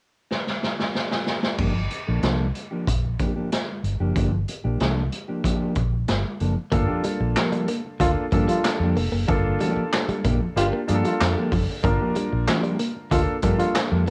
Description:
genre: funk.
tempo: 94 BPM.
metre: 4/4.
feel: straight.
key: G minor.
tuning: A4 = 442 Hz.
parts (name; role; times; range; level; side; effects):
raw garage drum kit; drums; 0.3-14.1 s; crash cymbal, handclaps, hi-hat, kick drum, snare drum; -28 LUFS; equal; cassette tape.
mellow electric guitar; accompaniment; 1.6-14.1 s; F3 to A4; -30 LUFS; equal; cassette tape.
vintage muted fingered electric bass; bass; 1.6-14.1 s; F1 to G2; -26 LUFS; equal; none.
direct-recorded clean electric guitar; riff; 6.7-14.1 s; F3 to Bb3; -31 LUFS; equal; cassette tape.
warm upright piano; stabs; 6.7-14.1 s; Bb3 to Bb4; -29 LUFS; equal; cassette tape, tape echo.
growling trombone; second line; 8.0-13.8 s; F4; -27 LUFS; equal; cassette tape.
room: light reverb.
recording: home recording on cassette.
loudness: -23 LUFS.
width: mono.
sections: 0.0-1.6 A section; 1.6-6.7 B section; 6.7-14.1 C section.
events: drum fill 0.3-1.6.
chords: 0.0 N.C.; 1.6 Gm7.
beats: 0.30 0.94 | 1.58 2.23 2.87 3.52 | 4.16 4.80 5.44 6.08 | 6.73 7.37 8.01 8.64 | 9.28 9.92 10.56 11.20 | 11.84 12.47 13.11 13.75.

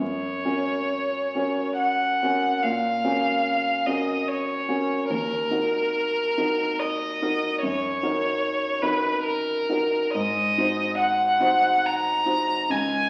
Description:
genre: classical, romantic duo for violin and grand piano.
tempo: 64-76 BPM.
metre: 3/4.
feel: rubato.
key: F# major.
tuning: A4 = 440 Hz.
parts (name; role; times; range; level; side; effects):
rich violin; melody; 0.0-13.1 s; A#4 to A#5; -26 LUFS; equal; none.
warm grand piano; accompaniment; 0.0-13.1 s; C#2 to B#4; -29 LUFS; equal; none.
room: wet stone room reverb, RT60 1.3 s.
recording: very old 78 rpm record, vinyl crackle.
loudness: -24 LUFS.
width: mono.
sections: 0.0-13.1 A section.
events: none.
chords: 0.0 F#; 2.6 F#/A#; 5.1 D#m; 7.6 D#m/F#; 10.1 G#7.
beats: | 0.00 0.88 1.79 | 2.63 3.45 4.27 | 5.09 5.91 6.80 | 7.62 8.41 9.22 | 10.12 10.98 11.83 | 12.69.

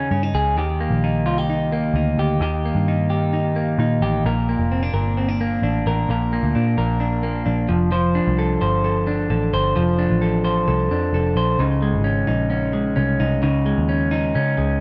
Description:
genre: jangly indie pop.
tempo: 131 BPM.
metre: 4/4.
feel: straight.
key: unclear.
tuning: A4 = 439 Hz.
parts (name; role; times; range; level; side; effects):
electric guitar through a small old amp; arpeggios; 0.0-14.8 s; Bb2 to C5; -22 LUFS; equal; digital delay.
vintage muted picked electric bass; bass; 0.0-14.8 s; F1 to Db3; -24 LUFS; equal; none.
room: light reverb, digital ambience.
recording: none.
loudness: -20 LUFS.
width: mono.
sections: 0.0-14.8 A section.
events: none.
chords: 0.0 Dbsus2; 0.6 Eb; 4.3 F6; 11.6 Dbsus2.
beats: 0.12 | 0.58 1.03 1.50 1.96 | 2.41 2.87 3.33 3.79 | 4.25 4.71 5.17 5.63 | 6.09 6.55 7.01 7.47 | 7.93 8.39 8.85 9.31 | 9.77 10.23 10.69 11.15 | 11.61 12.06 12.52 12.98 | 13.44 13.90 14.36.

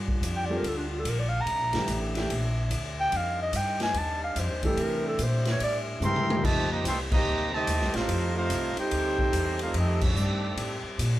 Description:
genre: jazz, big band swing.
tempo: 145 BPM.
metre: 4/4.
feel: swing 64% on 8ths.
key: F major from 6.4 s.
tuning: A4 = 440 Hz.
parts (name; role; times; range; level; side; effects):
warm saxophone section; sustained chords; 0.0-11.2 s; C3 to A4; -39 LUFS; equal; none.
upright bass; bass; 0.0-11.2 s; G1 to C3; -30 LUFS; equal; none.
swinging big-band drum kit; drums; 0.1-11.1 s; crash cymbal, hi-hat, kick drum, ride cymbal, snare drum, toms; -31 LUFS; left 1 dB; none.
dark clarinet; melody; 0.4-5.8 s; D4 to Bb5; -29 LUFS; equal; none.
warm baby grand piano; accompaniment; 0.5-6.8 s; E3 to A4; -32 LUFS; equal; none.
warm trumpet section; melody; 6.0-10.8 s; C4 to C6; -30 LUFS; right 1 dB; none.
dark trombone section; second line; 6.0-10.8 s; C3 to G4; -33 LUFS; right 2 dB; none.
room: moderate large studio reverb, RT60 1.1 s.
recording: band playing live in one room.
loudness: -25 LUFS.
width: side -14 dB against mid.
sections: 0.0-6.4 A section; 6.4-11.2 B section.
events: clarinet solo 0.0-6.4; drum fill 6.0-6.4; band accent 7.1, 10.0.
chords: 0.0 Gm7; 1.5 C13; 3.1 F13; 4.8 C13; 6.4 F13.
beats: 0.23 0.64 1.05 | 1.47 1.88 2.29 2.71 | 3.12 3.54 3.95 4.36 | 4.78 5.19 5.61 6.02 | 6.43 6.85 7.26 7.67 | 8.09 8.50 8.92 9.33 | 9.75 10.16 10.57 10.99.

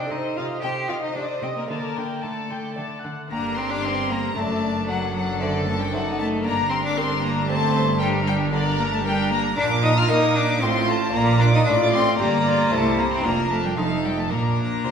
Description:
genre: classical, baroque-style concerto movement with solo episodes.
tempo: 114 BPM.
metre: 3/4.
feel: straight.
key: G minor, Bb major from 9.6 s.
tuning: A4 = 440 Hz.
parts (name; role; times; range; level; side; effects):
rich cello; melody; 0.0-14.9 s; D3 to G4; -25 LUFS; left 2 dB; none.
rich chamber violin section; melody; 0.0-14.9 s; C5 to F6; -27 LUFS; left 3 dB; none.
rich chamber violin section; second line; 0.0-14.9 s; A4 to G5; -29 LUFS; left 3 dB; none.
lute; accompaniment; 0.0-14.9 s; F2 to Eb5; -33 LUFS; right 1 dB; none.
warm chamber viola section; accompaniment; 0.0-14.9 s; C4 to A5; -30 LUFS; right 2 dB; none.
warm chamber cello section; bass; 0.1-14.9 s; F2 to Bb3; -28 LUFS; right 2 dB; none.
warm chamber double bass section; bass; 3.3-14.9 s; F1 to Bb2; -28 LUFS; right 4 dB; none.
room: wet recital hall reverb, RT60 1.4 s.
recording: recorded in a church or concert hall.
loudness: -20 LUFS.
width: side -7 dB against mid.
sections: 0.0-3.3 A section; 3.3-14.9 B section.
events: none.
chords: 0.1 Adim/C; 1.7 Dsus4; 2.8 D; 3.3 Gm; 4.4 D/F#; 4.9 D7/F#; 6.4 Gm; 7.5 D5/G; 8.0 Gm; 9.6 Bb; 10.6 F/A; 11.1 Bb; 12.2 Gm; 12.7 C; 13.2 Bb/F; 13.8 F7; 14.3 Bb.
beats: | 0.11 0.63 1.16 | 1.69 2.23 2.77 | 3.31 3.83 4.36 | 4.88 5.41 5.93 | 6.44 6.96 7.49 | 8.01 8.52 9.05 | 9.57 10.09 10.62 | 11.14 11.66 12.19 | 12.72 13.24 13.77 | 14.31 14.84.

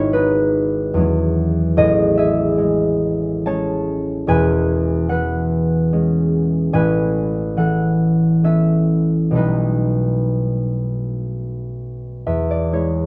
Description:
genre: classical, solo harp piece.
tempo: 58-75 BPM.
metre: 3/4.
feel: rubato.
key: E major.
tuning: A4 = 437 Hz.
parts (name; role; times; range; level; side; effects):
concert harp; solo; 0.0-13.1 s; E1 to A5; -18 LUFS; equal; none.
room: light reverb.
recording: dark, warm production.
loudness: -18 LUFS.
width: mono.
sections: 0.0-12.3 A section.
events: none.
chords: 0.0 G#m7; 1.0 Eadd9; 1.8 Amaj7#11; 4.3 E69; 6.7 Aadd9; 9.4 Baug7; 12.3 E6.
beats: 0.14 0.96 | 1.77 2.58 3.45 | 4.27 5.09 5.92 | 6.73 7.56 8.43 | 9.36 10.32 11.26 | 12.25.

